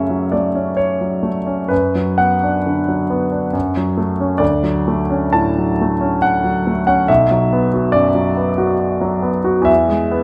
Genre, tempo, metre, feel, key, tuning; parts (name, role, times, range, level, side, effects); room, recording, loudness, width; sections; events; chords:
classical, romantic character piece for solo piano; 68 BPM; 3/4; rubato; A4 = 441 Hz
clear grand piano; solo; 0.0-10.2 s; B1 to A5; -17 LUFS; equal
moderate recital hall reverb, RT60 1.6 s; -17 LUFS; mono
0.0-10.2 A section
0.0 F#m; 1.7 Bm/F#; 3.5 F#m; 4.4 Dmaj7; 7.1 Bm; 9.7 E